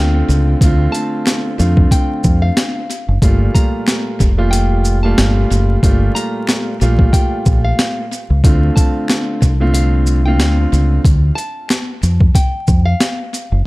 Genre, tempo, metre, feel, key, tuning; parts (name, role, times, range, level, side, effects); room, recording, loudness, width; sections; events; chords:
hip hop, boom-bap hip-hop; 92 BPM; 4/4; swing 56% on 16ths; G minor; A4 = 439 Hz
nylon-string guitar; melody; 0.0-13.6 s; F5 to Bb5; -26 LUFS; left 1 dB; high-pass filter, low-pass filter, tape echo
dark baby grand piano; accompaniment; 0.0-11.0 s; Bb2 to F4; -19 LUFS; right 1 dB; cassette tape, high-pass filter, low-pass filter, tape echo
deep dub fingered electric bass; bass; 0.0-13.6 s; F1 to F2; -13 LUFS; equal
boom bap sampler-style drum kit; drums; 0.3-13.5 s; hi-hat, kick drum, shaker, snare drum; -14 LUFS; equal; overdrive
finger snap; percussion; 1.3-13.2 s; -33 LUFS; left 3 dB
small room reverb; echo-heavy mix, vinyl crackle; -12 LUFS; side -21 dB against mid
0.0-3.2 A section; 3.2-13.7 A section
0.0 Dm7; 3.2 Gm9; 8.4 Dm7